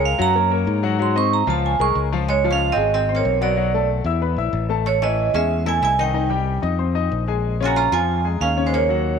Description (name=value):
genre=jazz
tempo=186 BPM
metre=4/4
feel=straight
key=unclear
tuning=A4 = 440 Hz
part: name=vibraphone with medium hard mallets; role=melody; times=0.0-9.2 s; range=C5 to Db6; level=-21 LUFS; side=right 9 dB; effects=none
part: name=clear baby grand piano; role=accompaniment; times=0.0-9.2 s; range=Db3 to Fb6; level=-24 LUFS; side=left 12 dB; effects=none
part: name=modern bright fingered electric bass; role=bass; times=0.0-9.2 s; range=Ab1 to Ab2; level=-22 LUFS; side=left 1 dB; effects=none
part: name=koto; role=second line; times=2.3-9.2 s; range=Ab3 to Gb4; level=-29 LUFS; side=left 3 dB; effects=none
room=light reverb, studio reverb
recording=1960s-style stereo with parts hard left and right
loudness=-17 LUFS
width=side -6 dB against mid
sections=0.0-2.3 A section; 2.3-9.2 B section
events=vibraphone solo 0.0-2.3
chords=0.4 Gbadd9; 1.0 Ab7; 1.6 Db6; 2.3 Dbmaj7; 3.6 Cbm7; 4.2 E5; 4.9 Amaj7; 6.2 Cmadd11; 6.8 F5; 7.4 Bbm7